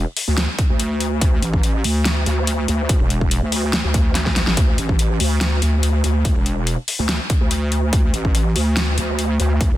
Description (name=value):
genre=heavy wobble dubstep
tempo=143 BPM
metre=4/4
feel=half-time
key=unclear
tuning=A4 = 441 Hz
part: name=wobble bass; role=bass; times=0.0-9.8 s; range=E1 to D2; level=-19 LUFS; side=equal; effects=chorus, overdrive
part: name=dubstep drum kit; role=drums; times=0.2-9.7 s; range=hi-hat, snare drum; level=-23 LUFS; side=left 1 dB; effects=studio reverb
part: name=electronic kick drum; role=drums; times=0.6-9.7 s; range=none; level=-18 LUFS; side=equal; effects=studio reverb
room=digital ambience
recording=dense, heavily limited modern master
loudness=-16 LUFS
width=side -14 dB against mid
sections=0.0-9.8 A section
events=drum fill 4.2-4.6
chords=none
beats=0.38 0.80 | 1.22 1.63 2.05 2.47 | 2.89 3.31 3.73 4.15 | 4.57 4.99 5.41 5.83 | 6.25 6.67 7.09 7.51 | 7.93 8.35 8.77 9.19 | 9.61